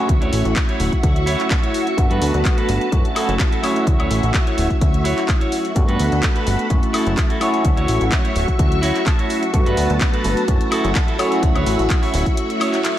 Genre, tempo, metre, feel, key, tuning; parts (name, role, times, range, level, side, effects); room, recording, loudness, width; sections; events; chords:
filtered disco house; 127 BPM; 4/4; swing 53% on 16ths; D major; A4 = 440 Hz
overdriven tine electric piano; accompaniment; 0.0-13.0 s; A3 to F#4; -22 LUFS; equal; phaser, sidechain pumping, low-pass filter
string machine, full ensemble; sustained chords; 0.0-13.0 s; F#4 to C#6; -24 LUFS; equal; ensemble chorus, sidechain pumping, low-pass filter
clean electric guitar; riff; 0.0-13.0 s; E4 to A5; -26 LUFS; right 2 dB; sidechain pumping, low-pass filter
plucky analog bass; bass; 0.1-12.2 s; D1 to G2; -21 LUFS; equal; sidechain pumping, low-pass filter
electronic kick drum; drums; 0.1-12.4 s; -18 LUFS; equal
house drum kit; drums; 0.1-12.9 s; handclaps, hi-hat, woodblock; -26 LUFS; left 1 dB; sidechain pumping on hats, sidechain pumping on perc
tube shaker; percussion; 0.1-12.9 s; barely audible
reverse cymbal; sound effects; 12.6-13.0 s; -33 LUFS; right 3 dB
light reverb; -16 LUFS; side -12 dB against mid
0.0-13.0 A section
clean electric guitar fill 8.8-9.5
0.0 Dmaj9; 2.0 Gmaj9; 2.9 F#m7; 3.6 Dmaj9; 5.8 Gmaj9; 6.7 F#m7; 7.4 Dmaj9; 9.5 Gmaj9; 10.5 F#m7; 11.2 Dmaj9